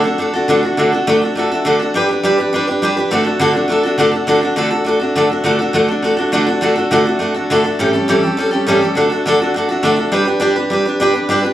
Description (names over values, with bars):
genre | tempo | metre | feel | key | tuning
rock | 206 BPM | 4/4 | straight | D major | A4 = 440 Hz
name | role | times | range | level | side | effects
picked steel-string acoustic guitar | solo | 0.0-11.5 s | A2 to B4 | -13 LUFS | equal | slapback echo
room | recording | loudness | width
light reverb | live gig heard through the venue's PA, club ambience | -13 LUFS | side -12 dB against mid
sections
0.8-10.1 A section; 10.1-11.5 B section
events
none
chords
0.0 D; 1.9 G; 3.1 D; 7.8 A7; 9.0 D; 10.1 G